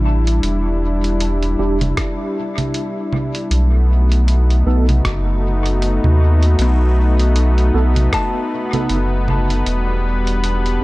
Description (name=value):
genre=ambient dub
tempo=78 BPM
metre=4/4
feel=swing 58% on 16ths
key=E minor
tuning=A4 = 442 Hz
part: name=warm analog pad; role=sustained chords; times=0.0-10.8 s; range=G3 to B4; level=-21 LUFS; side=left 1 dB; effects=chorus, vintage 12-bit sampler grit
part: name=buzzing kalimba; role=arpeggios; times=0.0-1.9, 6.6-10.8 s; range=B3 to A5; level=-29 LUFS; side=left 3 dB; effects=dub echo
part: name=warm sub bass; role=bass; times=0.0-10.8 s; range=E1 to D#2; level=-15 LUFS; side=equal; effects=none
part: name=lo-fi sampler-style drum kit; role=drums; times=0.3-10.8 s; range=congas, hi-hat, rim click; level=-25 LUFS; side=right 2 dB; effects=dub echo
part: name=mellow tine electric piano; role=stabs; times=1.6-9.0 s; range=B3 to A4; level=-26 LUFS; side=right 3 dB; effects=none
part: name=electronic kick drum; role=drums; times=2.0-8.3 s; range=none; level=-23 LUFS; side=equal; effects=none
room=little or no reverb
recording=dark, warm production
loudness=-14 LUFS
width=side -20 dB against mid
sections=0.0-10.8 A section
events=none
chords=0.0 Em7; 3.5 B7; 9.7 Em7